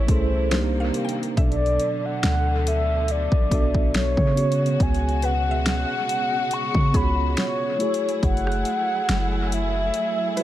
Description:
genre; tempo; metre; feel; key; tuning
contemporary R&B; 70 BPM; 4/4; swing 54% on 16ths; F# minor; A4 = 441 Hz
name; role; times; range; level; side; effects
mellow horn-like synth lead; melody; 0.0-10.4 s; B#4 to C#6; -25 LUFS; equal; chorus, dub echo
mellow tine electric piano; accompaniment; 0.0-10.4 s; B2 to E5; -28 LUFS; right 3 dB; medium stereo tremolo, dub echo
warm studio string section; sustained chords; 0.0-10.4 s; B2 to G#4; -30 LUFS; left 1 dB; sidechain pumping
warm 808-style bass; bass; 0.0-9.9 s; F#1 to C#3; -23 LUFS; equal; none
pop drum kit; drums; 0.1-10.4 s; hi-hat, kick drum, rim click, snare drum; -25 LUFS; equal; none
mallet-like synth pluck; texture; 0.5-10.4 s; G#4 to G5; -36 LUFS; left 1 dB; chorus, dub echo
room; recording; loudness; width
digital ambience; echo-heavy mix; -20 LUFS; side -13 dB against mid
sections
0.0-10.4 A section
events
kick muted 9.9-10.4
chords
0.0 Amaj9; 0.5 Cm7; 1.4 Bm7; 4.4 C#7sus4; 7.8 F#m9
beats
0.51 | 1.37 2.23 3.08 3.94 | 4.80 5.66 6.51 7.37 | 8.23 9.09 9.94

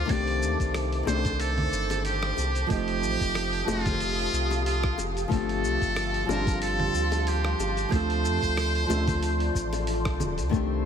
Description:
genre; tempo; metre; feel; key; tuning
sunset chillout; 92 BPM; 4/4; swing 55% on 16ths; unclear; A4 = 440 Hz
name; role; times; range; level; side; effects
trumpet with metal mute; melody; 0.0-10.2 s; F4 to D5; -30 LUFS; equal; tape echo
nylon-string guitar; accompaniment; 0.0-10.9 s; Eb3 to A5; -30 LUFS; moving between left 11 dB and right 8 dB; auto-pan, digital delay
ethereal airy pad; sustained chords; 0.0-10.9 s; F4 to Eb6; -34 LUFS; right 1 dB; ensemble chorus, built-in reverb
warm sub bass; bass; 0.0-10.9 s; D1 to F2; -29 LUFS; equal; none
dusty soul sampler-style drum kit; drums; 0.1-10.7 s; congas, hi-hat, rim click, shaker; -36 LUFS; equal; none
electronic kick drum; drums; 0.1-10.7 s; none; -29 LUFS; equal; none
bongos; percussion; 1.1-10.3 s; none; -38 LUFS; left 7 dB; none
drifting glass-harmonics texture; texture; 10.6-10.9 s; C5 to C6; -46 LUFS; right 6 dB; chorus, built-in reverb
room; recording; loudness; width
light reverb, digital ambience; none; -24 LUFS; side -8 dB against mid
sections
0.0-10.5 A section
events
none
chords
0.1 Cm69; 2.7 F9; 5.3 G9sus4; 7.9 Dm7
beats
| 0.09 0.74 1.40 2.05 | 2.70 3.35 4.01 4.66 | 5.31 5.96 6.62 7.27 | 7.92 8.57 9.22 9.88 | 10.53

